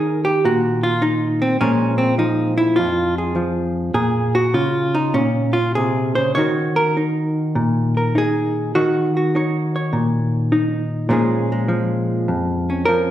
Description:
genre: solo jazz.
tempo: 102 BPM.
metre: 4/4.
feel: swing 68% on 8ths, rubato.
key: Bb minor.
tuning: A4 = 439 Hz.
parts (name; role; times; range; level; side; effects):
hollow-body jazz guitar; solo; 0.0-13.1 s; F2 to Db5; -16 LUFS; equal; none.
room: wet recital hall reverb, RT60 1.3 s.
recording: recorded in a church or concert hall.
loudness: -16 LUFS.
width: side -12 dB against mid.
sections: 0.0-13.1 A section.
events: hollow-body jazz guitar solo 0.0-13.1.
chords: 0.0 Eb5; 1.6 Bbm7; 6.4 Ebm7; 11.1 Bbm7.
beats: 0.44 1.02 | 1.60 2.19 2.77 3.36 | 3.95 4.54 5.14 5.76 | 6.37 6.97 7.56 8.15 | 8.75 9.34 9.93 10.51 | 11.10 11.69 12.28 12.88.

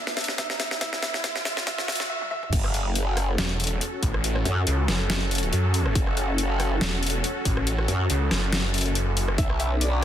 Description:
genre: heavy wobble dubstep.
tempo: 140 BPM.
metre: 4/4.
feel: swing 54% on 16ths, half-time.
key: F# minor.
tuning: A4 = 438 Hz.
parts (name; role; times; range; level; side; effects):
warm baby grand piano; melody; 0.0-2.5, 9.4-10.0 s; D5 to E5; -32 LUFS; right 1 dB; ping-pong delay.
supersaw pad; sustained chords; 0.0-10.0 s; C#4 to B4; -32 LUFS; equal; sidechain pumping.
riser; sound effects; 0.0-2.1 s; none; -35 LUFS; right 1 dB; none.
dubstep drum kit; drums; 0.1-9.9 s; crash cymbal, hi-hat, rim click, snare drum, toms; -28 LUFS; left 1 dB; overdrive, studio reverb.
electronic kick drum; drums; 0.4-9.5 s; none; -26 LUFS; equal; studio reverb.
growl bass; bass; 2.5-10.0 s; F#1 to F#2; -24 LUFS; equal; chorus, overdrive.
snarling distorted saw bass; bass; 3.4-9.4 s; E1 to F#2; -25 LUFS; equal; distortion, overdrive.
room: light reverb, digital ambience.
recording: dense, heavily limited modern master, high-pass filter.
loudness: -22 LUFS.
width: side -10 dB against mid.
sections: 0.0-2.5 A section; 2.5-10.0 B section.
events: build-up 0.0-2.5; drum fill 0.0-2.1, 2.2-2.5; riser 0.0-2.1; break 2.1-2.5; drop 2.5-10.0.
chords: 0.0 Bmadd9; 2.5 F#m; 9.4 Bmadd9.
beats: 0.38 | 0.81 1.24 1.67 2.10 | 2.53 2.95 3.38 3.81 | 4.24 4.67 5.10 5.53 | 5.95 6.38 6.81 7.24 | 7.67 8.10 8.53 8.95 | 9.38 9.81.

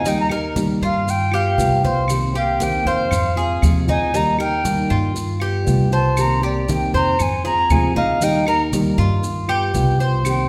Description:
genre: latin, Cuban son and guajira.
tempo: 118 BPM.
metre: 4/4.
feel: straight.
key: unclear.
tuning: A4 = 438 Hz.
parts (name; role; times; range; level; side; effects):
reedy silver concert flute; melody; 0.0-10.5 s; D5 to Bb5; -24 LUFS; equal; none.
nylon-string guitar; accompaniment; 0.0-10.5 s; C3 to G4; -26 LUFS; equal; none.
Cuban tres; arpeggios; 0.0-10.5 s; Eb4 to C5; -25 LUFS; equal; none.
upright bass; bass; 0.0-10.5 s; C2 to G2; -24 LUFS; equal; none.
congas; percussion; 0.1-10.5 s; none; -30 LUFS; equal; none.
maracas; percussion; 0.1-10.5 s; none; -37 LUFS; equal; none.
claves; percussion; 0.3-10.5 s; none; -36 LUFS; equal; none.
room: wet scoring stage reverb, RT60 1.5 s.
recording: none.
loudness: -18 LUFS.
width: mono.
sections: 0.0-10.5 A section.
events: flute solo 0.0-10.5.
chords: 0.1 Eb; 1.1 G7; 2.1 Cm7; 3.1 Fm; 4.1 Eb; 5.2 G7; 6.2 Cm7; 7.2 Fm; 8.2 Eb; 9.2 G7.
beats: | 0.06 0.57 1.08 1.59 | 2.10 2.61 3.12 3.63 | 4.14 4.65 5.16 5.67 | 6.18 6.69 7.20 7.71 | 8.21 8.72 9.23 9.74 | 10.25.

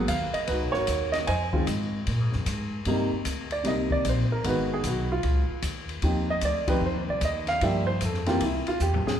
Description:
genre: jazz piano trio.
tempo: 151 BPM.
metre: 4/4.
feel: swing 64% on 8ths.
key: C minor.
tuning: A4 = 440 Hz.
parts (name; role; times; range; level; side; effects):
warm baby grand piano; melody; 0.0-9.2 s; C3 to Ab5; -26 LUFS; right 1 dB; none.
upright bass; bass; 0.0-9.1 s; Ab1 to Bb2; -28 LUFS; equal; none.
open jazz drum kit; drums; 0.1-9.2 s; hi-hat, kick drum, ride cymbal, snare drum, toms; -33 LUFS; left 3 dB; none.
room: wet recital hall reverb, RT60 1.6 s.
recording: recorded in a church or concert hall.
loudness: -24 LUFS.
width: side -9 dB against mid.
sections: 0.0-2.9 A section; 2.9-9.2 B section.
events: grand piano solo 2.9-9.2; drum fill 8.8-9.2.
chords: 0.0 Abm9 (rootless); 1.3 Fm7; 2.1 Bb5; 2.9 Cm7; 4.4 Abm7; 5.2 Dbadd9; 6.0 Eb69; 7.6 Gm7; 8.4 C.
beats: 0.09 0.48 0.88 | 1.28 1.67 2.07 2.46 | 2.86 3.26 3.65 4.05 | 4.45 4.84 5.24 5.63 | 6.03 6.43 6.83 7.22 | 7.62 8.02 8.41 8.81.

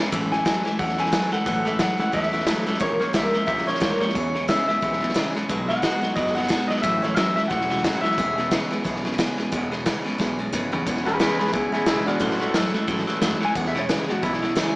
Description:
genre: rockabilly.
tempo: 179 BPM.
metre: 4/4.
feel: swing 59% on 8ths.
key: E major.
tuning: A4 = 440 Hz.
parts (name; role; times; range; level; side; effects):
picked steel-string acoustic guitar; accompaniment; 0.0-14.8 s; A2 to A#4; -28 LUFS; equal; none.
electric guitar at the edge of break-up; riff; 0.0-14.7 s; E2 to G#3; -28 LUFS; equal; none.
upright bass; bass; 0.1-14.6 s; E1 to E2; -33 LUFS; equal; none.
raw garage drum kit; drums; 0.1-14.7 s; hi-hat, kick drum, snare drum, toms; -25 LUFS; equal; none.
electric guitar through a small old amp; melody; 0.3-14.8 s; A3 to G#5; -25 LUFS; equal; tape echo.
room: moderate studio reverb, RT60 0.5 s.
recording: small speaker sound.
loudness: -20 LUFS.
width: side -24 dB against mid.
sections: 0.0-10.9 A section; 10.9-14.8 B section.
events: drum fill 10.2-10.9; clean electric guitar solo 10.9-14.8.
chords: 0.1 A6; 2.8 A#dim7; 4.2 E6; 5.5 B6; 6.8 A6; 8.2 E6; 12.2 A6; 13.6 E6.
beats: | 0.12 0.46 0.80 1.13 | 1.47 1.80 2.14 2.47 | 2.81 3.14 3.48 3.82 | 4.15 4.49 4.83 5.16 | 5.50 5.83 6.17 6.50 | 6.84 7.18 7.51 7.85 | 8.18 8.52 8.85 9.19 | 9.52 9.86 10.20 10.53 | 10.87 11.20 11.54 11.88 | 12.21 12.55 12.89 13.22 | 13.56 13.90 14.23 14.57.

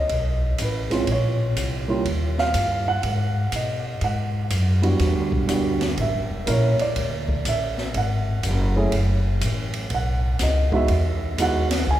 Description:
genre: jazz, small-group swing and bop.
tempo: 122 BPM.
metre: 4/4.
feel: swing 66% on 8ths.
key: unclear.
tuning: A4 = 440 Hz.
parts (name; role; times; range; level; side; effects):
dark baby grand piano; accompaniment; 0.0-12.0 s; G3 to G#5; -24 LUFS; right 2 dB; none.
upright bass; bass; 0.0-12.0 s; E1 to B2; -22 LUFS; equal; none.
open jazz drum kit; drums; 0.1-12.0 s; hi-hat, kick drum, ride cymbal, snare drum; -29 LUFS; right 1 dB; none.
room: wet church reverb, RT60 3.8 s.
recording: recorded in a church or concert hall.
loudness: -20 LUFS.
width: side -12 dB against mid.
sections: 0.0-12.0 A section.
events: none.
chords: 0.0 Emaj7 (rootless); 1.1 A#madd9; 2.1 D#; 3.0 G#m7; 5.0 Em7; 6.0 A7b9; 7.0 D; 8.9 F#m; 9.9 B69; 10.9 Emaj9.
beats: 0.10 0.59 | 1.08 1.57 2.06 2.55 | 3.04 3.53 4.02 4.51 | 5.00 5.49 5.98 6.47 | 6.96 7.45 7.94 8.43 | 8.92 9.41 9.90 10.39 | 10.89 11.38 11.87.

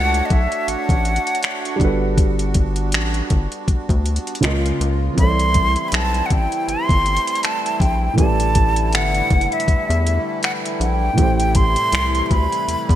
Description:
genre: contemporary R&B.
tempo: 80 BPM.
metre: 4/4.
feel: swing 58% on 16ths.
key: unclear.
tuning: A4 = 440 Hz.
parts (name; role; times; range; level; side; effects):
breathy silver concert flute; melody; 0.0-13.0 s; Eb5 to C6; -21 LUFS; right 1 dB; digital delay.
dark concert grand piano; accompaniment; 0.0-13.0 s; A2 to Eb5; -25 LUFS; right 3 dB; none.
accordion; sustained chords; 0.0-13.0 s; C3 to C#5; -27 LUFS; equal; light tremolo tuning, sidechain pumping.
rubbery square bass; bass; 0.0-13.0 s; F#1 to E2; -20 LUFS; left 1 dB; none.
smooth R&B drum kit; drums; 0.1-13.0 s; finger snaps, hi-hat, kick drum; -19 LUFS; left 1 dB; vintage 12-bit sampler grit, gated reverb.
room: light reverb.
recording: bright 1980s-style digital production.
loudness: -16 LUFS.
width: side -12 dB against mid.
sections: 0.0-11.2 A section; 11.2-13.0 B section.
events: none.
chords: 0.0 Dmaj7; 1.8 Gmaj7; 4.4 C#6; 5.2 C6; 8.2 A7sus4; 11.2 Am7.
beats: 0.68 1.43 | 2.18 2.93 3.68 4.43 | 5.18 5.93 6.68 7.43 | 8.18 8.93 9.68 10.43 | 11.18 11.93 12.68.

